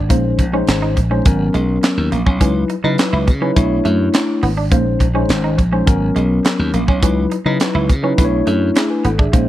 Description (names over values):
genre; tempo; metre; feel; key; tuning
early-eighties boogie funk; 104 BPM; 4/4; straight; unclear; A4 = 440 Hz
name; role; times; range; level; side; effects
electric guitar at the edge of break-up; riff; 0.0-9.4 s; Ab3 to Fb4; -24 LUFS; right 4 dB; analog chorus
slap bass; bass; 0.0-9.5 s; Ab1 to Db3; -18 LUFS; equal; none
mellow tine electric piano; accompaniment; 0.1-9.5 s; Gb3 to Ab5; -18 LUFS; left 2 dB; phaser
tight funk drum kit; drums; 0.1-9.5 s; handclaps, hi-hat, kick drum, snare drum; -16 LUFS; equal; none
room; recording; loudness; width
studio reverb; dry, close 1970s-style studio recording; -13 LUFS; side -14 dB against mid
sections
0.0-9.5 A section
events
none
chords
0.1 Bbm11; 1.3 Abm11; 2.4 Dbm11; 3.6 Bm11; 4.7 Bbm11; 5.9 Abm11; 7.0 Dbm11; 8.2 Bm11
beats
| 0.10 0.68 1.25 1.83 | 2.41 2.99 3.56 4.14 | 4.72 5.29 5.87 6.45 | 7.03 7.60 8.18 8.76 | 9.33